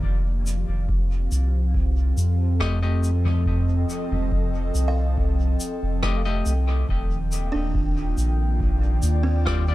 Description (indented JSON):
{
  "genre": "ambient dub",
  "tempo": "70 BPM",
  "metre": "4/4",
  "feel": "straight",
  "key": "F mixolydian",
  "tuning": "A4 = 440 Hz",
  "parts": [
    { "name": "airy breathy pad", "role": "sustained chords", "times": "0.0-9.7 s", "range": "Eb3 to G5", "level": "-30 LUFS", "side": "equal", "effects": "chorus" },
    { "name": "buzzing kalimba", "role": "arpeggios", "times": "0.0-9.7 s", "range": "C4 to F5", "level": "-33 LUFS", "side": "right 3 dB", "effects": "dub echo" },
    { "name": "round analog bass", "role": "bass", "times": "0.0-9.7 s", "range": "Eb1 to F2", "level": "-21 LUFS", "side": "equal", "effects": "none" },
    { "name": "electronic kick drum", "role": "drums", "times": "0.0-9.6 s", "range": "none", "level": "-28 LUFS", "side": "equal", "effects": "none" },
    { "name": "soft-mallet drum kit", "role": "drums", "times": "0.5-9.6 s", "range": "rim click, shaker, toms", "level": "-33 LUFS", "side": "equal", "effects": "dub echo" },
    { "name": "semi-hollow electric guitar", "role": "stabs", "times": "2.6-9.7 s", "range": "G3 to Eb5", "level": "-33 LUFS", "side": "left 4 dB", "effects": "dub echo" }
  ],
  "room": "small room ambience",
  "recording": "echo-heavy mix",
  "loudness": "-20 LUFS",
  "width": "side -16 dB against mid",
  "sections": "0.0-9.7 A section",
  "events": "none",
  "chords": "0.0 F9; 6.9 Ebmaj9"
}